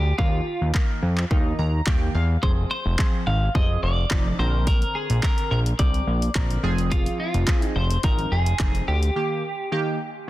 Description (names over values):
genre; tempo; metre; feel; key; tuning
dance-pop; 107 BPM; 4/4; straight; F dorian; A4 = 441 Hz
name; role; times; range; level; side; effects
twelve-string electric guitar; melody; 0.0-9.7 s; F4 to F5; -29 LUFS; equal; dub echo
fat analog bass; bass; 0.0-9.1 s; F1 to F2; -22 LUFS; equal; sidechain pumping
chorused retro synth keys; accompaniment; 0.2-10.0 s; D3 to Bb5; -30 LUFS; right 1 dB; sidechain pumping
house drum kit; drums; 0.2-9.1 s; handclaps, hi-hat, kick drum; -23 LUFS; equal; none
room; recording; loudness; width
little or no reverb; dense, heavily limited modern master; -20 LUFS; side -15 dB against mid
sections
0.0-10.3 A section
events
synth keys fill 1.3-2.4; break 9.2-10.3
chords
0.2 Eb; 2.4 Fm; 4.4 Bbadd9; 6.6 Fm; 9.2 Eb